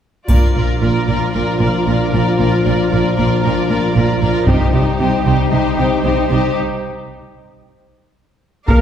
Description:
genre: cinematic, epic orchestral film score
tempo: 114 BPM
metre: 4/4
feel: straight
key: Bb major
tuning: A4 = 439 Hz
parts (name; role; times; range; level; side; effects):
- rich symphonic violin section; melody; 0.3-6.6 s; C5 to D5; -25 LUFS; left 3 dB; none
- rich studio violin section; second line; 0.3-8.8 s; G4 to F5; -23 LUFS; left 1 dB; none
- warm symphonic viola section; accompaniment; 0.3-8.8 s; Eb4 to D5; -22 LUFS; right 1 dB; none
- mellow French horn section; sustained chords; 0.3-8.8 s; F3 to Eb4; -20 LUFS; left 3 dB; none
- rich symphonic cello section; bass; 0.3-8.8 s; Bb2 to C3; -20 LUFS; right 2 dB; none
- warm symphonic double bass section; bass; 0.3-8.8 s; Bb1 to C2; -20 LUFS; right 2 dB; none
- taiko ensemble; drums; 0.3-1.3, 4.5-5.5, 8.7-8.8 s; none; -15 LUFS; equal; none
- triangle; percussion; 0.3-1.3 s; none; -38 LUFS; left 1 dB; none
room: wet concert hall reverb, RT60 1.8 s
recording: heard from further back in the room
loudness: -13 LUFS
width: side -9 dB against mid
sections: 0.3-8.7 A section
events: break 6.6-8.7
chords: 0.3 Bb; 4.5 Cm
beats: | 0.29 0.82 1.34 1.87 | 2.39 2.91 3.43 3.95 | 4.47 4.99 5.51 6.04 | 6.56 7.09 7.62 8.15 | 8.68

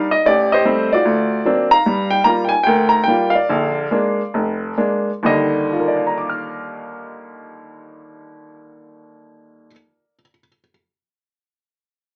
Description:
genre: solo jazz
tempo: 128-150 BPM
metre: 4/4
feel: swing 64% on 8ths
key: Eb major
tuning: A4 = 441 Hz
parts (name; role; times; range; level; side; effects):
- bright upright piano; solo; 0.0-10.7 s; F1 to F6; -18 LUFS; equal; none
room: wet small room reverb, RT60 0.5 s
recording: AM radio sound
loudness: -17 LUFS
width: mono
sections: 0.0-1.8 A section; 1.8-5.2 B section; 5.2-9.0 C section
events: slowing down 1.8-5.2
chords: 0.3 Am7b5; 1.1 D7alt; 1.8 Gm7; 3.5 Bb7; 5.2 Ebmaj7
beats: | 0.25 0.65 1.05 1.45 | 1.85 2.25 2.65 3.06 | 3.48 3.90 4.33 4.78 | 5.25 5.71 6.18 6.66 | 7.12 7.60 8.07 8.54

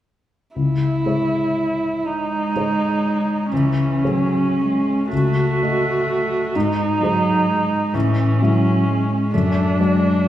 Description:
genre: classical, slow romantic movement for piano quartet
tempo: 36-44 BPM (dotted quarters)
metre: 6/8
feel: rubato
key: C# minor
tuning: A4 = 439 Hz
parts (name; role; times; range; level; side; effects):
- dark baby grand piano; accompaniment; 0.6-10.3 s; C#2 to E5; -21 LUFS; left 3 dB; none
- dark viola; accompaniment; 0.6-10.3 s; C#4 to F#4; -21 LUFS; right 1 dB; none
- rich cello; second line; 2.0-10.3 s; E3 to A3; -22 LUFS; right 2 dB; none
room: wet recital hall reverb, RT60 1.6 s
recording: recorded in a church or concert hall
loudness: -17 LUFS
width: side -12 dB against mid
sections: 0.6-10.3 A section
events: none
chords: 0.6 C#m; 3.5 Amaj7/C#; 5.1 D#m7b5/C#; 6.5 G#; 7.9 Amaj7; 9.3 D/F#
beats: | 0.56 2.05 | 3.52 5.11 | 6.55 7.95 | 9.33

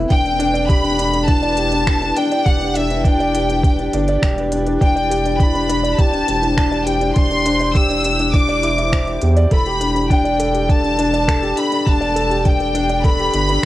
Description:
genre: piano and strings electronica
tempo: 102 BPM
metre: 4/4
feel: straight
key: E minor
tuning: A4 = 440 Hz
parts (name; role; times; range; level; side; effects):
- granular cloud pad; sustained chords; 0.0-13.7 s; C4 to D5; -28 LUFS; equal; built-in reverb, sidechain pumping
- felt-muted upright piano; riff; 0.0-13.7 s; D4 to E5; -19 LUFS; equal; none
- round analog bass; bass; 0.0-13.6 s; D1 to E2; -23 LUFS; equal; sidechain pumping
- bright studio violin section; melody; 0.1-13.7 s; E5 to E6; -20 LUFS; left 2 dB; cassette tape
- electronic kick drum; drums; 0.1-13.2 s; none; -15 LUFS; equal; cassette tape
- organic electronic drum kit; drums; 0.1-13.6 s; finger snaps, hi-hat; -30 LUFS; right 1 dB; overdrive, cassette tape
room: light reverb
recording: home recording on cassette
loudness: -14 LUFS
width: side -15 dB against mid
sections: 0.0-13.7 A section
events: none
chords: 0.1 Em7; 4.8 Cadd9; 9.5 Gadd9/E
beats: | 0.10 0.69 1.28 1.87 | 2.46 3.05 3.63 4.22 | 4.81 5.40 5.99 6.58 | 7.16 7.75 8.34 8.93 | 9.52 10.11 10.69 11.28 | 11.87 12.46 13.05 13.63

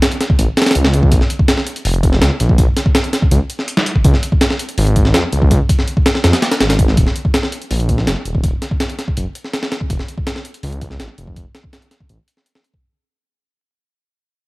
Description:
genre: drum and bass, jungle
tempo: 164 BPM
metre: 4/4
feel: straight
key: Eb minor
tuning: A4 = 440 Hz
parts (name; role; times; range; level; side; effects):
- breakbeat sampler-style drum kit; drums; 0.0-12.8 s; hi-hat, kick drum, snare drum; -14 LUFS; equal; none
- detuned saw bass; bass; 0.4-12.2 s; Eb1 to F2; -15 LUFS; equal; none
room: digital ambience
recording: vinyl crackle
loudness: -13 LUFS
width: side -23 dB against mid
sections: 0.0-7.0 A section; 7.0-12.8 B section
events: drop 0.0-7.0; fade-out 7.0-12.8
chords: none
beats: 0.02 0.39 0.75 | 1.12 1.49 1.85 2.22 | 2.58 2.95 3.31 3.68 | 4.05 4.41 4.78 5.14 | 5.51 5.88 6.24 6.61 | 6.97 7.34 7.71 8.07 | 8.44 8.80 9.17 9.53 | 9.90 10.27 10.63 11.00 | 11.36 11.73 12.10 12.46

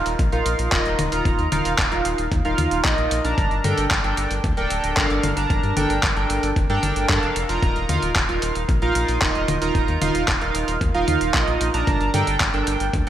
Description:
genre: italo disco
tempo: 113 BPM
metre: 4/4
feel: straight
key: unclear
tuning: A4 = 440 Hz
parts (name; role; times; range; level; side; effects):
- chorused polysynth; stabs; 0.0-13.1 s; D4 to Bb5; -22 LUFS; right 2 dB; vintage 12-bit sampler grit, tape echo
- round analog bass; bass; 0.0-13.1 s; D1 to G2; -26 LUFS; equal; none
- dusty soul sampler-style drum kit; drums; 0.1-13.1 s; handclaps, hi-hat, toms; -25 LUFS; left 1 dB; overdrive, studio reverb
- electronic kick drum; drums; 0.2-13.0 s; none; -24 LUFS; equal; overdrive, studio reverb
room: moderate plate reverb, RT60 1.9 s, digital ambience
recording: dreamy mix soaked in reverb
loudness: -18 LUFS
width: side -11 dB against mid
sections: 0.0-13.1 A section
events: none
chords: 0.0 Ebsus2; 3.4 Gmadd9; 7.6 Ebsus2; 11.9 Gmadd9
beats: 0.19 0.72 | 1.25 1.78 2.32 2.85 | 3.38 3.91 4.44 4.97 | 5.50 6.03 6.56 7.09 | 7.63 8.16 8.69 9.22 | 9.75 10.28 10.81 11.34 | 11.87 12.40 12.94

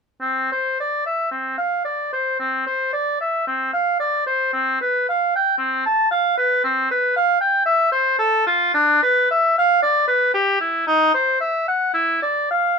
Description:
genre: classical, baroque-style fantasia for unaccompanied oboe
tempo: 56 BPM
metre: 4/4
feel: rubato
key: unclear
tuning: A4 = 440 Hz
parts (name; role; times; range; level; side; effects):
- warm oboe; solo; 0.2-12.8 s; C4 to A5; -17 LUFS; equal; none
room: light reverb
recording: minimal, uncompressed stereo recording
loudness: -17 LUFS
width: side -5 dB against mid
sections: 0.2-12.8 A section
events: none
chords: none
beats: | 0.20 1.31 2.40 3.49 | 4.54 5.60 6.64 7.67 | 8.76 9.84 10.88 11.94

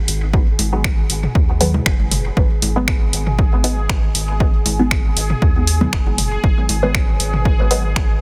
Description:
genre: dub techno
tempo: 118 BPM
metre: 4/4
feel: swing 54% on 16ths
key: G# minor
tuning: A4 = 445 Hz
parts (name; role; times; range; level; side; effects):
- bubbling stepped-filter texture; texture; 0.0-8.2 s; G#4; -31 LUFS; equal; chorus, built-in reverb, sidechain pumping
- round analog bass; bass; 0.1-8.2 s; F#1 to D#2; -23 LUFS; equal; sidechain pumping
- deep house drum kit; drums; 0.1-8.1 s; finger snaps, hi-hat; -24 LUFS; equal; overdrive, soft clipping on snare, dub echo
- electronic kick drum; drums; 0.3-8.1 s; none; -20 LUFS; equal; overdrive
- electronic congas and toms; percussion; 0.6-7.4 s; none; -27 LUFS; equal; overdrive, sidechain pumping on perc, sidechain pumping on toms, dub echo
- filtered dub chord stab; stabs; 0.7-7.8 s; D#3 to B3; -26 LUFS; equal; phaser, sidechain pumping, dub echo
room: digital ambience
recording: dense, heavily limited modern master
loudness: -17 LUFS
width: mono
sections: 0.0-8.2 A section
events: none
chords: 0.0 G#m7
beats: | 0.34 0.84 1.35 1.86 | 2.37 2.88 3.39 3.89 | 4.40 4.91 5.42 5.93 | 6.44 6.95 7.45 7.96

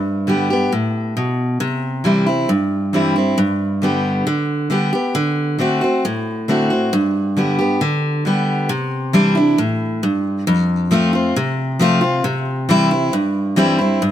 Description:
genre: country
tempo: 135 BPM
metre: 4/4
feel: straight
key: C major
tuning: A4 = 442 Hz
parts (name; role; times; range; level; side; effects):
- picked steel-string acoustic guitar; solo; 0.0-14.1 s; F2 to G4; -15 LUFS; equal; none
room: light reverb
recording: close, detailed microphones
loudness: -15 LUFS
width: side -11 dB against mid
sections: 0.0-8.7 A section; 8.7-14.1 B section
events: none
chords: 0.0 G; 1.6 C; 3.4 G; 5.2 D7; 6.9 G; 8.7 Cadd9; 10.5 F; 12.3 C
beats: 0.28 0.72 1.16 | 1.60 2.05 2.49 2.94 | 3.38 3.82 4.27 4.71 | 5.16 5.60 6.04 6.49 | 6.93 7.38 7.82 8.26 | 8.71 9.15 9.59 10.04 | 10.48 10.92 11.37 11.81 | 12.25 12.70 13.14 13.58 | 14.03

